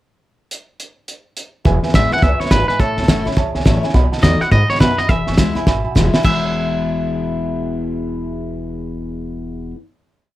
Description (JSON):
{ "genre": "rockabilly", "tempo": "209 BPM", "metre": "4/4", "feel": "swing 62% on 8ths", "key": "E major", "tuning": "A4 = 440 Hz", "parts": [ { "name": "cloth-damped thuddy drum kit", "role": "drums", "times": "0.5-6.3 s", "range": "crash cymbal, hi-hat, kick drum, snare drum", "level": "-16 LUFS", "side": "equal", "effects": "none" }, { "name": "dark upright piano", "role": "accompaniment", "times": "1.6-9.7 s", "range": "B4 to C#6", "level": "-26 LUFS", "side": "right 7 dB", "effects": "none" }, { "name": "picked steel-string acoustic guitar", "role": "accompaniment", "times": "1.6-9.8 s", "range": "E2 to F#4", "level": "-22 LUFS", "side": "left 3 dB", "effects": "none" }, { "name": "upright bass", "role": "bass", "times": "1.7-9.7 s", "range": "E1 to B2", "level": "-21 LUFS", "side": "equal", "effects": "none" }, { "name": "twangy electric guitar", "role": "melody", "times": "2.0-9.7 s", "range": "A4 to F#5", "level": "-20 LUFS", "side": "equal", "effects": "tape echo" } ], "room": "little or no reverb", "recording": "none", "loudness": "-14 LUFS", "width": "side -15 dB against mid", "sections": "0.5-1.6 pickup bar; 1.6-6.2 A section; 6.2-8.5 final chord", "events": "upright piano fill 5.4-6.2; drum fill 5.7-6.2", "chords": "0.5 N.C.; 1.6 E; 2.8 A; 3.9 B7; 5.1 E" }